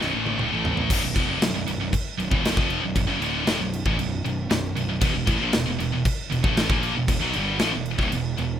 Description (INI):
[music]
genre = heavy metal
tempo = 117 BPM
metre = 4/4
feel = straight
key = B minor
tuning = A4 = 441 Hz
[part]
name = scooped high-gain guitar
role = riff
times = 0.0-8.6 s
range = B1 to A#3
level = -27 LUFS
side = left 12 dB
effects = distortion
[part]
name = scooped high-gain guitar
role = riff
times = 0.0-8.6 s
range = B1 to A#3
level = -27 LUFS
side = right 9 dB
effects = distortion
[part]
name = fuzz picked electric bass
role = bass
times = 0.0-8.6 s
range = B0 to B1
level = -30 LUFS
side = equal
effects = overdrive
[part]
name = big rock drum kit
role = drums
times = 0.0-8.5 s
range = crash cymbal, kick drum, snare drum, toms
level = -25 LUFS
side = equal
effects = none
[sound]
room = little or no reverb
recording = rough home demo mix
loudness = -21 LUFS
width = side -10 dB against mid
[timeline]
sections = 0.9-8.6 A section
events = drum fill 0.0-0.9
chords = 0.0 Bm; 5.0 E5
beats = 0.40 | 0.91 1.43 1.94 2.45 | 2.97 3.48 4.00 4.51 | 5.02 5.54 6.05 6.57 | 7.08 7.60 8.12